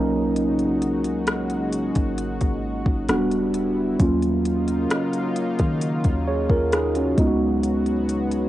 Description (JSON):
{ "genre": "contemporary R&B", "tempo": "66 BPM", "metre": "4/4", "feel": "straight", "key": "Eb minor", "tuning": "A4 = 440 Hz", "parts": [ { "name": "mellow tine electric piano", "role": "accompaniment", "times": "0.0-8.5 s", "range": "Gb3 to Db5", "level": "-22 LUFS", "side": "right 1 dB", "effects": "analog chorus, cassette tape" }, { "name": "lush unison pad", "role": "sustained chords", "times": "0.0-8.5 s", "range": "Db3 to Gb4", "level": "-30 LUFS", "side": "left 2 dB", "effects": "chorus, cassette tape" }, { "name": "clean 808-style bass", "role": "bass", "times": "0.0-8.5 s", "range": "E1 to Eb3", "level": "-29 LUFS", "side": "equal", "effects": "none" }, { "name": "smooth R&B drum kit", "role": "drums", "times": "0.4-8.5 s", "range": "hi-hat, kick drum, rim click", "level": "-24 LUFS", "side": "equal", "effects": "overdrive, vintage 12-bit sampler grit, cassette tape" } ], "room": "light reverb", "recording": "home recording on cassette", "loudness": "-20 LUFS", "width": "side -14 dB against mid", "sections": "0.0-8.5 A section", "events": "none", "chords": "0.0 Ab7sus4; 3.1 Em9; 4.0 Ebm9; 7.2 Db7sus4" }